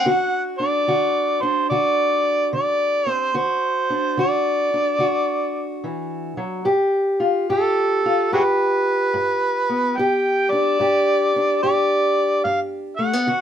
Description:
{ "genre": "acoustic country blues, solo or duo", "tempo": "72 BPM", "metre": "4/4", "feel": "swing 65% on 8ths", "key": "unclear", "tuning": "A4 = 440 Hz", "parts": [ { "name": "overdriven harmonica", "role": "melody", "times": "0.0-13.4 s", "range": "F#4 to G5", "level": "-19 LUFS", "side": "equal", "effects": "none" }, { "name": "fingerpicked steel-string acoustic guitar", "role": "accompaniment", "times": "0.0-13.4 s", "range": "G2 to G4", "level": "-21 LUFS", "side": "left 1 dB", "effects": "none" } ], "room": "light reverb", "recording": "minimal, uncompressed stereo recording", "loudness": "-18 LUFS", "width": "side -9 dB against mid", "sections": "0.0-13.4 A section", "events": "none", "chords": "0.0 D; 6.7 G7", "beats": "| 0.04 0.86 1.69 2.52 | 3.34 4.17 5.00 5.83 | 6.65 7.48 8.31 9.14 | 9.97 10.79 11.62 12.45 | 13.28" }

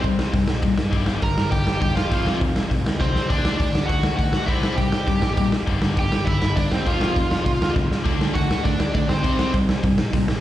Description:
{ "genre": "punk rock", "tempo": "202 BPM", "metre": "4/4", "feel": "straight", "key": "G dorian", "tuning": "A4 = 440 Hz", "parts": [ { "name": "high-gain lead guitar", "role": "melody", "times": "0.0-9.5 s", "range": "C4 to Bb5", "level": "-26 LUFS", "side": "right 1 dB", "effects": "distortion, slapback echo, ping-pong delay" }, { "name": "biting overdriven guitar", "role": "riff", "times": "0.0-10.3 s", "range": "F2 to D4", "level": "-26 LUFS", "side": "left 4 dB", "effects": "none" }, { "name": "fuzz picked electric bass", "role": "bass", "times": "0.0-10.4 s", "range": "E1 to Bb2", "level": "-26 LUFS", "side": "equal", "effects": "overdrive" }, { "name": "raw garage drum kit", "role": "drums", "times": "0.0-10.4 s", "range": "hi-hat, kick drum, snare drum", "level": "-22 LUFS", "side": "equal", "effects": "none" }, { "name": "sludgy distorted guitar", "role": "riff", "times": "8.0-10.3 s", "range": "C3 to D4", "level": "-28 LUFS", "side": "right 11 dB", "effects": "overdrive, slapback echo" } ], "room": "little or no reverb", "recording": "live gig heard through the venue's PA, recital hall reverb", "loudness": "-18 LUFS", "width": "side -13 dB against mid", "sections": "0.0-10.4 A section", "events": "drum fill 3.0, 7.8", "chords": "0.0 C5; 0.9 Gm; 2.0 F5; 3.3 D; 4.5 C; 5.7 G5; 6.7 F5; 8.1 D; 9.2 C5", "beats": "0.03 0.33 0.63 | 0.92 1.22 1.52 1.81 | 2.11 2.41 2.70 3.00 | 3.29 3.59 3.89 4.18 | 4.48 4.78 5.08 5.37 | 5.67 5.97 6.26 6.56 | 6.86 7.16 7.45 7.75 | 8.05 8.35 8.64 8.94 | 9.24 9.54 9.84 10.13" }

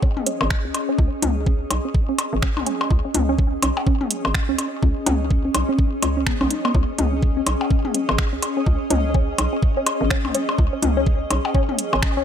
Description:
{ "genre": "minimal techno", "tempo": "125 BPM", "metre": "4/4", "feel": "swing 60% on 16ths", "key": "unclear", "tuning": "A4 = 439 Hz", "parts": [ { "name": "resonant blip pluck", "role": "riff", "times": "0.0-12.2 s", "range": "B3 to D#4", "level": "-26 LUFS", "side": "right 1 dB", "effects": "phaser, sidechain pumping, digital delay" }, { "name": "electronic kick drum", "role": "drums", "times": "0.0-12.1 s", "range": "none", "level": "-20 LUFS", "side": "equal", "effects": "none" }, { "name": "granular cloud pad", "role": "texture", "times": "0.0-12.2 s", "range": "C#4 to D#5", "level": "-27 LUFS", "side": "left 1 dB", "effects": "built-in reverb, sidechain pumping" }, { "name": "electronic toms and percussion blips", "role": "percussion", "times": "0.2-12.0 s", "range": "none", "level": "-26 LUFS", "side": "left 4 dB", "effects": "digital delay" }, { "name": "garage drum kit", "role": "drums", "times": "0.3-12.1 s", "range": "finger snaps, hi-hat", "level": "-26 LUFS", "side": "right 2 dB", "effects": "none" }, { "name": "hollow knocking FM bass", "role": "bass", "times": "0.4-12.2 s", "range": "G#1 to C#2", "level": "-24 LUFS", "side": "equal", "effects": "sidechain pumping" } ], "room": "light reverb", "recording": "none", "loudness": "-18 LUFS", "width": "side -9 dB against mid", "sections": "0.0-12.2 A section", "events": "filter sweep on synth pluck 0.0-12.2", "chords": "0.0 C#5", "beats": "0.03 0.51 | 0.98 1.47 1.95 2.42 | 2.90 3.38 3.87 4.34 | 4.83 5.30 5.79 6.26 | 6.75 7.22 7.71 8.19 | 8.66 9.14 9.62 10.11 | 10.59 11.06 11.54 12.03" }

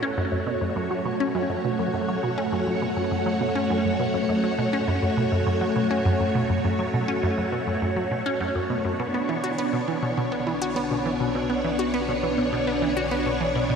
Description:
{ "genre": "ambient, sequencer-driven space music", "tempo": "102 BPM", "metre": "4/4", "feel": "straight", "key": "unclear", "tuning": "A4 = 438 Hz", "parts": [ { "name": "string machine, full ensemble", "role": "sustained chords", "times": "0.0-13.8 s", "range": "A3 to C#5", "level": "-24 LUFS", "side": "equal", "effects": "phaser, ensemble chorus, shimmer reverb" }, { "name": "resonant blip pluck", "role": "riff", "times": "0.0-13.8 s", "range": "F#2 to F#4", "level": "-26 LUFS", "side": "equal", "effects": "phaser, analog delay" }, { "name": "analog drone", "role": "bass", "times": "2.4-13.8 s", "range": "B1 to F#2", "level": "-39 LUFS", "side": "equal", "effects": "chorus" } ], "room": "wet lush hall reverb, RT60 2.6 s", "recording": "dreamy mix soaked in reverb", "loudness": "-22 LUFS", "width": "side -6 dB against mid", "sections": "0.0-13.8 A section", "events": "fade-in on synth drone 0.0-13.8", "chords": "0.0 F#m; 9.0 Bmadd9", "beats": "0.17 0.76 1.35 | 1.94 2.53 3.12 3.70 | 4.29 4.88 5.47 6.06 | 6.64 7.23 7.82 8.41 | 9.00 9.59 10.17 10.76 | 11.35 11.94 12.53 13.12 | 13.70" }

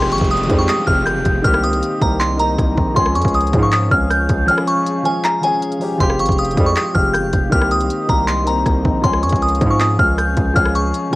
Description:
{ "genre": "hip hop, trap", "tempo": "158 BPM", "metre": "4/4", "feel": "half-time", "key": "unclear", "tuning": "A4 = 440 Hz", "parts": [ { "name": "glassy synth bell", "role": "melody", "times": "0.0-11.2 s", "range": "Ab5 to G6", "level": "-18 LUFS", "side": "left 1 dB", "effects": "chorus, phaser, cassette tape" }, { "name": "dark grand piano", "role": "accompaniment", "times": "0.0-11.2 s", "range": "Eb3 to Ab4", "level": "-21 LUFS", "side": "equal", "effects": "cassette tape" }, { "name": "ethereal airy pad", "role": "sustained chords", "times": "0.8-11.2 s", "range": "Ab3 to F5", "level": "-30 LUFS", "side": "equal", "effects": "ensemble chorus, built-in reverb, cassette tape" }, { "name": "distorted 808-style bass", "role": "bass", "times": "0.0-11.2 s", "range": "F1 to Ab2", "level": "-19 LUFS", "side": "equal", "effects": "distortion" }, { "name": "trap drum kit", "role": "drums", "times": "0.0-11.2 s", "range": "handclaps, hi-hat, kick drum, rim click", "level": "-20 LUFS", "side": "equal", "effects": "cassette tape" }, { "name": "downlifter", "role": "sound effects", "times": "0.0-3.0 s", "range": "none", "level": "-29 LUFS", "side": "equal", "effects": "none" }, { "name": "dark brass ensemble", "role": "stabs", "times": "0.5-0.8, 3.5-3.8, 6.6-6.8, 9.6-9.9 s", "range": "C2 to G3", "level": "-21 LUFS", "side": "right 2 dB", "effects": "cassette tape" } ], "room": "digital ambience", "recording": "home recording on cassette, vinyl crackle", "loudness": "-14 LUFS", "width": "side -19 dB against mid", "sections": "0.0-11.2 A section", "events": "break 4.5-6.0", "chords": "0.0 Fmadd9; 1.4 Cm7; 3.0 Db; 6.0 Fmadd9; 7.5 Cm7; 9.0 Db", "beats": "0.31 0.69 1.07 | 1.45 1.82 2.21 2.58 | 2.96 3.34 3.72 4.10 | 4.48 4.86 5.24 5.62 | 6.00 6.38 6.76 7.14 | 7.52 7.90 8.28 8.66 | 9.04 9.42 9.80 10.18 | 10.56 10.94" }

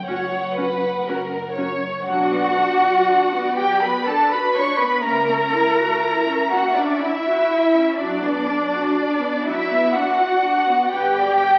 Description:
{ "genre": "classical, slow romantic movement for string orchestra", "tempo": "61 BPM", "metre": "3/4", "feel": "rubato", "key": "B minor", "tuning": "A4 = 441 Hz", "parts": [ { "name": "warm studio violin section", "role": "melody", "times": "0.0-11.6 s", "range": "D5 to F#5", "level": "-35 LUFS", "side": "equal", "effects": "none" }, { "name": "warm studio violin section", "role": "second line", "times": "0.1-11.6 s", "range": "A#4 to C#6", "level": "-22 LUFS", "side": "equal", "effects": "none" }, { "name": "warm studio viola section", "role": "accompaniment", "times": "0.1-11.6 s", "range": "F#3 to G5", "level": "-28 LUFS", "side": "equal", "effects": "none" }, { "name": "warm studio double bass section", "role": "bass", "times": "0.1-11.6 s", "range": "F#1 to C#2", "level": "-40 LUFS", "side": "equal", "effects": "none" }, { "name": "warm symphonic cello section", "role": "bass", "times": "0.1-11.6 s", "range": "F#2 to C#5", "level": "-25 LUFS", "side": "equal", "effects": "none" } ], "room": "wet recital hall reverb, RT60 1.4 s", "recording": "very old 78 rpm record, vinyl crackle", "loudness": "-20 LUFS", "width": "mono", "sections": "0.0-2.1 A section; 2.1-11.6 B section", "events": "none", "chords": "0.0 F#sus4; 2.1 Bm; 5.0 F#7/C#; 8.0 Bm; 10.9 G", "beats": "0.07 1.07 | 2.08 3.09 4.07 | 5.04 6.03 7.01 | 7.99 8.96 9.95 | 10.93" }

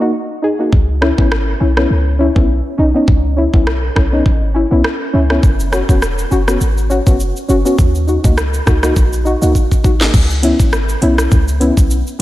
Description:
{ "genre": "dancehall", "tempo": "102 BPM", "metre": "4/4", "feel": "swing 56% on 16ths", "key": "C# dorian", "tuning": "A4 = 440 Hz", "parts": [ { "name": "deep mellow chord stab", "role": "accompaniment", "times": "0.0-12.2 s", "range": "A#3 to G#4", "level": "-16 LUFS", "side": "left 1 dB", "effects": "chorus, sidechain pumping" }, { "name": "clean 808-style bass", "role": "bass", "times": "0.7-12.2 s", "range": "E1 to D#2", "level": "-15 LUFS", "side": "equal", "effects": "none" }, { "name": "island pop drum kit", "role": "drums", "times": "0.7-12.2 s", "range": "crash cymbal, hi-hat, kick drum, rim click, shaker, snare drum", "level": "-14 LUFS", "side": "equal", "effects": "none" } ], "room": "light reverb, digital ambience", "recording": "none", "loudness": "-11 LUFS", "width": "side -15 dB against mid", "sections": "0.0-10.1 A section; 10.1-12.2 B section", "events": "drum fill 9.6-10.1", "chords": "0.0 D#m; 0.7 C#m7; 5.4 F#sus4; 7.8 D#m; 10.1 C#m7", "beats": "0.14 | 0.73 1.31 1.90 2.49 | 3.08 3.67 4.26 4.84 | 5.43 6.02 6.61 7.20 | 7.79 8.37 8.96 9.55 | 10.14 10.73 11.31 11.90" }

